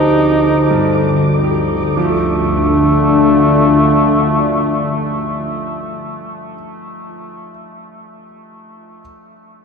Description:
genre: dark ambient drone.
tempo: free time.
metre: none.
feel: none.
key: D in sen.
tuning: A4 = 440 Hz.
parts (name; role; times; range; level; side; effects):
clear duduk; melody; 0.0-5.7 s; A3 to Eb4; -18 LUFS; equal; analog delay.
dark analog pad; sustained chords; 0.0-6.2 s; D3 to A5; -17 LUFS; left 2 dB; wide subtle chorus.
clear concert grand piano; arpeggios; 0.0-9.0 s; G2 to G4; -23 LUFS; right 3 dB; analog delay.
organ-like drone; drone; 0.0-5.7 s; D2 to F3; -17 LUFS; left 1 dB; ensemble chorus, built-in reverb.
flickering grainy texture; texture; 0.0-2.0 s; D6; -28 LUFS; right 2 dB; built-in reverb.
room: wet plate reverb, RT60 3.8 s.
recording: dreamy mix soaked in reverb.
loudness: -11 LUFS.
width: side -5 dB against mid.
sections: 0.0-2.0 A section; 2.0-6.5 B section.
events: none.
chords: 0.0 Eb/D; 2.0 Dm.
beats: free time.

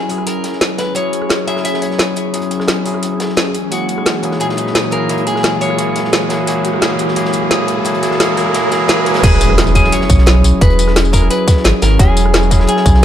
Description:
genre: liquid drum and bass.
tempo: 174 BPM.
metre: 4/4.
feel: straight.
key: E lydian.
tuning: A4 = 440 Hz.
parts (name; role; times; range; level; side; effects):
clean electric guitar; melody; 0.0-13.0 s; F#4 to E5; -20 LUFS; left 2 dB; vintage 12-bit sampler grit, ping-pong delay.
overdriven tine electric piano; accompaniment; 0.0-13.0 s; A#2 to G#4; -18 LUFS; equal; digital delay.
airy breathy pad; sustained chords; 0.0-13.0 s; E3 to G#4; -21 LUFS; equal; chorus, sidechain pumping.
warm sub bass; bass; 0.0-13.0 s; E1 to C#2; -12 LUFS; equal; tube saturation, high-pass filter.
riser and impact; sound effects; 0.6-10.6 s; none; -23 LUFS; right 1 dB; none.
crunchy breakbeat drum kit; drums; 0.1-13.0 s; hi-hat, snare drum; -26 LUFS; equal; none.
drum and bass drum kit; drums; 0.1-12.9 s; crash cymbal, hi-hat, rim click, snare drum, tambourine; -18 LUFS; equal; none.
electronic kick drum; drums; 9.2-12.9 s; none; -11 LUFS; equal; none.
room: light reverb, digital ambience.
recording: none.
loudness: -11 LUFS.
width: side -10 dB against mid.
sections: 0.0-9.2 A section; 9.2-13.0 B section.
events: build-up 0.0-9.2; riser 0.6-9.2; drop 9.2-13.0; impact 9.2-10.6.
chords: 0.0 E69; 3.5 F#9; 9.2 E69.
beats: 0.27 0.61 | 0.96 1.30 1.65 1.99 | 2.34 2.68 3.03 3.37 | 3.72 4.06 4.41 4.75 | 5.10 5.44 5.79 6.13 | 6.48 6.82 7.17 7.51 | 7.86 8.20 8.54 8.89 | 9.23 9.58 9.93 10.27 | 10.61 10.96 11.30 11.65 | 11.99 12.34 12.68 13.03.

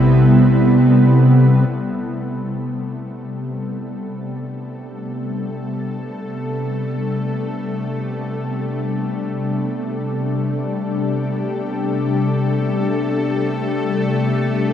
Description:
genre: ambient.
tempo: free time.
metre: none.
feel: none.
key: A minor.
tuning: A4 = 441 Hz.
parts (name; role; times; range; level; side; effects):
ethereal airy pad; sustained chords; 0.0-14.7 s; C3 to A4; -17 LUFS; left 1 dB; ensemble chorus, built-in reverb.
deep rumbling drone; bass; 0.0-1.6 s; A1; -37 LUFS; left 1 dB; built-in reverb.
bowed-like drone; drone; 0.0-14.7 s; A3 to A4; -29 LUFS; equal; built-in reverb.
room: wet cathedral reverb, RT60 6.3 s.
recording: in a vast, echoing space.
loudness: -17 LUFS.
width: side -9 dB against mid.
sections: 0.0-1.7 A section; 1.7-14.7 B section.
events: fade-in on ambient pad 1.7-14.7; fade-in on synth drone 1.7-14.7.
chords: 0.0 Am9; 1.7 Am11.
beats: free time.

